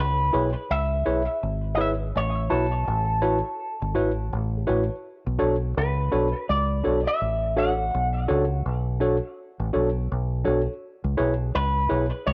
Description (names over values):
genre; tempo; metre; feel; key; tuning
lovers rock reggae; 83 BPM; 4/4; swing 59% on 16ths; B dorian; A4 = 437 Hz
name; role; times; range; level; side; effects
electric guitar with an envelope filter; melody; 0.0-12.3 s; A4 to F#5; -29 LUFS; equal; cassette tape, tape echo, plate reverb
deep dub fingered electric bass; bass; 0.0-12.3 s; G#1 to C#2; -28 LUFS; equal; none
tine electric piano; accompaniment; 0.3-12.1 s; D4 to C#5; -28 LUFS; equal; overdrive, cassette tape, plate reverb
room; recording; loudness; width
moderate studio ambience, RT60 0.5 s; home recording on cassette; -25 LUFS; mono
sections
0.0-12.3 A section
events
none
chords
0.0 C#m7; 2.1 A6; 5.0 Bm7; 10.8 C#m7